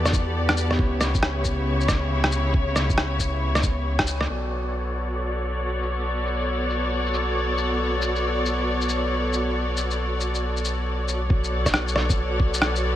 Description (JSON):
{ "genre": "future garage", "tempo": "137 BPM", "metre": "4/4", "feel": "swing 64% on 16ths", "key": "B minor", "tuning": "A4 = 440 Hz", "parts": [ { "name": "muted studio string section", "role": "sustained chords", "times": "0.0-13.0 s", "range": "C#3 to D5", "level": "-25 LUFS", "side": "equal", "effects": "sidechain pumping, low-pass filter" }, { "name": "warm sub bass", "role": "bass", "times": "0.0-13.0 s", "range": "B1 to E2", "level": "-26 LUFS", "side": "equal", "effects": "sidechain pumping" }, { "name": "electronic kick drum", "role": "drums", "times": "0.1-4.1, 11.3-12.5 s", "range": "none", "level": "-23 LUFS", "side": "equal", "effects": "none" }, { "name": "electronic rim click and shaker", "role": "drums", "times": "0.1-12.8 s", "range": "none", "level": "-25 LUFS", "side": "equal", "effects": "low-pass filter on snare, low-pass filter on perc" } ], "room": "light reverb, digital ambience", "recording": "vinyl crackle", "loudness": "-21 LUFS", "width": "side -12 dB against mid", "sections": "0.0-4.3 A section; 4.3-11.3 B section; 11.3-13.0 C section", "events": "band accent 4.0; filter sweep on drum 4.3-11.3; filter sweep on string section 4.3-11.3", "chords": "0.0 Em11; 0.8 C#m7b5; 4.3 Bm9" }